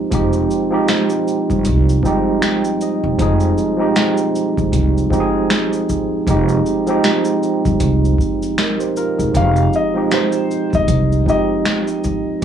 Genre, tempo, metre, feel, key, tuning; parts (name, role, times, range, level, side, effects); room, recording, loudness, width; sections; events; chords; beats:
lo-fi hip hop; 78 BPM; 4/4; swing 57% on 16ths; F minor; A4 = 440 Hz
barky tine electric piano; accompaniment; 0.0-12.4 s; F3 to G5; -17 LUFS; right 2 dB; medium stereo tremolo, low-pass filter
upright bass; bass; 0.1-12.2 s; E1 to C2; -17 LUFS; equal
booming analog drum machine; drums; 0.1-12.4 s; finger snaps, hi-hat, kick drum, shaker, snare drum; -20 LUFS; equal; vintage 12-bit sampler grit
felt-muted upright piano; melody; 9.4-12.4 s; C5 to F5; -20 LUFS; left 3 dB; low-pass filter
moderate studio ambience, RT60 0.5 s; -14 LUFS; side -9 dB against mid
0.0-9.3 A section; 9.3-12.4 A section
tine electric piano fill 2.0-3.2
0.0 Fm9
| 0.12 0.88 1.65 2.42 | 3.19 3.96 4.73 5.50 | 6.27 7.04 7.81 8.58 | 9.35 10.12 10.88 11.65 | 12.42